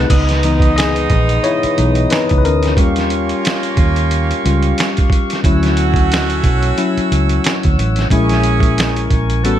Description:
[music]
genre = R&B, neo-soul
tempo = 90 BPM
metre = 4/4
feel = swing 56% on 16ths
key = C# dorian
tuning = A4 = 440 Hz
[part]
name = tine electric piano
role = accompaniment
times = 0.0-9.6 s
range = E3 to D#5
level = -18 LUFS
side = left 5 dB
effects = none
[part]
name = tonewheel organ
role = sustained chords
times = 0.0-9.6 s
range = B3 to E6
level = -23 LUFS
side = right 2 dB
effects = slow rotary speaker
[part]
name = vintage muted fingered electric bass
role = bass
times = 0.0-9.6 s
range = A1 to D#2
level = -16 LUFS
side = right 1 dB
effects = none
[part]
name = bright saxophone section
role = stabs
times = 0.1-9.6 s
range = G#3 to A4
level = -22 LUFS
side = right 5 dB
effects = none
[part]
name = boom bap sampler-style drum kit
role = drums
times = 0.1-9.6 s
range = crash cymbal, finger snaps, hi-hat, kick drum, snare drum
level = -17 LUFS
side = right 1 dB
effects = none
[sound]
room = digital ambience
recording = none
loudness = -12 LUFS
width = side -11 dB against mid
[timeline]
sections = 0.1-9.6 A section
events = tine electric piano solo 0.1-9.6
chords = 0.1 C#m9; 2.8 D#9; 5.4 Dmaj9; 8.1 A#m7b5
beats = | 0.10 0.77 1.44 2.10 | 2.77 3.44 4.10 4.77 | 5.44 6.10 6.77 7.44 | 8.10 8.77 9.44

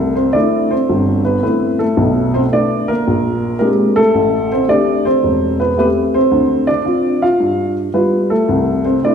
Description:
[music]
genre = solo jazz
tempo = 111 BPM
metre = 4/4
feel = swing 67% on 8ths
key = C major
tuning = A4 = 444 Hz
[part]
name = dark upright piano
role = solo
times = 0.0-9.1 s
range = E1 to F5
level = -12 LUFS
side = equal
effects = none
[sound]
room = wet recital hall reverb, RT60 1.7 s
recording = recorded in a church or concert hall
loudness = -12 LUFS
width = side -7 dB against mid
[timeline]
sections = 0.0-9.1 A section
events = none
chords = 0.0 C6; 2.0 Bm7; 3.1 Bb13; 4.1 Am7; 6.3 Dm7; 7.4 G7; 8.5 C6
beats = 0.34 0.89 1.43 | 1.97 2.51 3.05 3.59 | 4.14 4.68 5.22 5.76 | 6.30 6.84 7.39 7.93 | 8.47 9.01

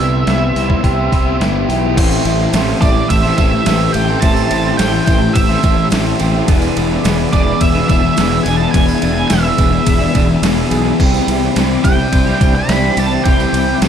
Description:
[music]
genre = rock, shoegaze and dream pop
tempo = 106 BPM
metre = 4/4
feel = straight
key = A minor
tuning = A4 = 441 Hz
[part]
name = octave-fuzz lead guitar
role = melody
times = 0.0-13.8 s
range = D5 to B5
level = -20 LUFS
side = right 4 dB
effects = distortion, analog delay
[part]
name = dark analog pad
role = sustained chords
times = 0.0-13.9 s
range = G4 to E6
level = -26 LUFS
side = left 2 dB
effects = chorus
[part]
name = electric guitar through a small old amp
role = arpeggios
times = 0.0-13.9 s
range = E3 to G#4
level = -26 LUFS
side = left 1 dB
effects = analog chorus, analog delay
[part]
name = overdriven electric guitar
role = riff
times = 0.0-13.9 s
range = A2 to C5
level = -20 LUFS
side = right 14 dB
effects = reverse reverb
[part]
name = thick fuzz guitar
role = riff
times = 0.0-13.9 s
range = E2 to C5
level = -18 LUFS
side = left 10 dB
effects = distortion, wide subtle chorus
[part]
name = fuzz fingered electric bass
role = bass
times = 0.0-13.9 s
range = E1 to C2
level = -18 LUFS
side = equal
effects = overdrive
[part]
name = detuned 8-bit digital drum machine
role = drums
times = 0.3-13.9 s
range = crash cymbal, hi-hat, kick drum, ride cymbal, snare drum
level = -16 LUFS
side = equal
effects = overdrive
[part]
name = tambourine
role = percussion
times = 2.1-13.9 s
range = none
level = -35 LUFS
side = right 10 dB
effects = none
[sound]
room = digital ambience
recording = dark, warm production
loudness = -11 LUFS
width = side -8 dB against mid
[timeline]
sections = 0.0-2.0 A section; 2.0-13.9 B section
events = none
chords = 0.0 Cmaj7; 2.0 Am7; 6.5 E7; 11.0 Cmaj9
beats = 0.27 0.83 1.40 | 1.97 2.53 3.10 3.66 | 4.23 4.79 5.36 5.92 | 6.48 7.05 7.61 8.18 | 8.74 9.30 9.87 10.43 | 10.99 11.56 12.12 12.69 | 13.25 13.81

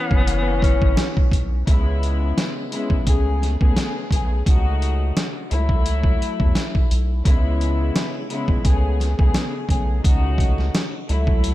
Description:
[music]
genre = hip hop, boom-bap hip-hop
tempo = 86 BPM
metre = 4/4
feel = swing 55% on 16ths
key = C# minor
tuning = A4 = 440 Hz
[part]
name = bright tenor saxophone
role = melody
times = 0.0-1.1 s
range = B3 to C#4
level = -28 LUFS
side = left 2 dB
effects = high-pass filter, low-pass filter, ping-pong delay
[part]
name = warm studio string section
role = accompaniment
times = 0.0-11.5 s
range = C#3 to G#4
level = -25 LUFS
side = left 3 dB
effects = cassette tape, high-pass filter, low-pass filter
[part]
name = soft dub sub bass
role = bass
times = 0.1-11.5 s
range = F#1 to E2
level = -21 LUFS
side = equal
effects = none
[part]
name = trip hop sampler-style drum kit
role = drums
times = 0.1-11.5 s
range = hi-hat, kick drum, snare drum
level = -19 LUFS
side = equal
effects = none
[sound]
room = digital ambience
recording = none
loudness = -17 LUFS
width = side -16 dB against mid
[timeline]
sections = 0.0-1.7 A section; 1.7-11.5 B section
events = none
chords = 0.0 C#m7; 3.1 Amaj7/C#; 4.5 F#m6/C#; 5.5 F#m7/C#; 7.3 C#m7; 8.6 Amaj7/C#; 10.0 F#m6/C#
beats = 0.28 0.97 | 1.67 2.37 3.07 3.76 | 4.46 5.16 5.86 6.55 | 7.25 7.95 8.65 9.35 | 10.04 10.74 11.44

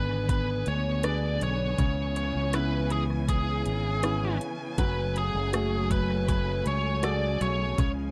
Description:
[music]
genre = pop ballad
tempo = 80 BPM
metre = 4/4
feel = straight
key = F# minor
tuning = A4 = 441 Hz
[part]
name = biting lead guitar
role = melody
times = 0.0-7.9 s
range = G#4 to D5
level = -34 LUFS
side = equal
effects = overdrive
[part]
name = warm concert grand piano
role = accompaniment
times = 0.0-8.1 s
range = C#3 to B4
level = -36 LUFS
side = equal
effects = none
[part]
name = warm studio string section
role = sustained chords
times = 0.0-8.1 s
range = C#3 to G#5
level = -37 LUFS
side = equal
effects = none
[part]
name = fingered electric bass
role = bass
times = 0.0-8.1 s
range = F#1 to D2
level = -32 LUFS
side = equal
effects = none
[part]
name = smooth R&B drum kit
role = drums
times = 0.1-8.0 s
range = hi-hat, kick drum, rim click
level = -31 LUFS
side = equal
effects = none
[sound]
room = little or no reverb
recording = dry, close 1970s-style studio recording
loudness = -28 LUFS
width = mono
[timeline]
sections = 0.0-8.1 A section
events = none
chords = 0.0 G#dim; 1.8 C#m7; 4.8 F#madd9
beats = 0.29 1.04 | 1.79 2.54 3.29 4.04 | 4.79 5.54 6.29 7.04 | 7.79

